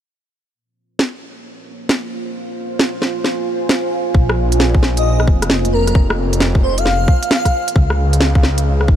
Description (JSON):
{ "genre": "future garage", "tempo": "133 BPM", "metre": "4/4", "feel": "swing 65% on 16ths", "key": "unclear", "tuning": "A4 = 442 Hz", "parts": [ { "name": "deep dark ambient pad", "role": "sustained chords", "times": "1.7-9.0 s", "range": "Bb3 to Ab5", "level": "-23 LUFS", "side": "right 2 dB", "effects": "chorus, built-in reverb, sidechain pumping" }, { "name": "organic electronic drum kit", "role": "drums", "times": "1.0-8.9 s", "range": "hi-hat, rim click, snare drum", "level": "-19 LUFS", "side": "equal", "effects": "overdrive" }, { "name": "swelling detuned saw bass", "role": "bass", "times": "4.1-9.0 s", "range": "F1 to Db2", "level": "-16 LUFS", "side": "equal", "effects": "sidechain pumping" }, { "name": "electronic kick drum", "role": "drums", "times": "4.1-9.0 s", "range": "none", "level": "-13 LUFS", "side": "equal", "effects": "none" }, { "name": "airy dreamy lead", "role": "melody", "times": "5.0-7.7 s", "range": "Bb4 to F5", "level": "-21 LUFS", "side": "left 1 dB", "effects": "chorus, dub echo" } ], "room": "little or no reverb", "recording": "none", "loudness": "-13 LUFS", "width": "side -10 dB against mid", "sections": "0.5-4.2 A section; 4.2-9.0 B section", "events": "fade-in on ambient pad 0.5-4.2", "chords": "0.5 Bbm; 2.3 Fm; 4.2 Bbm7; 6.0 Fm; 7.8 Db", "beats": "| 0.54 0.99 1.44 1.89 | 2.35 2.80 3.25 3.70 | 4.15 4.60 5.05 5.50 | 5.95 6.41 6.86 7.31 | 7.76 8.21 8.66" }